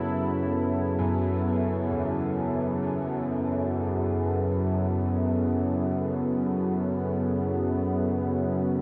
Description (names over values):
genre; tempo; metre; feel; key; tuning
dark ambient drone; free time; none; none; unclear; A4 = 441 Hz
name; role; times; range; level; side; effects
sweeping resonant pad; sustained chords; 0.0-8.8 s; F#3 to A4; -30 LUFS; equal; chorus
overtone-sweeping drone; drone; 0.0-8.8 s; F#2 to C#3; -31 LUFS; equal; chorus, built-in reverb
warm grand piano; arpeggios; 1.0-8.8 s; E2 to B4; -41 LUFS; equal; ensemble chorus, tape echo
room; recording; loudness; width
wet huge ambient reverb, RT60 8.2 s; dreamy mix soaked in reverb; -27 LUFS; mono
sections
0.0-8.8 A section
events
none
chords
0.0 F#m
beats
free time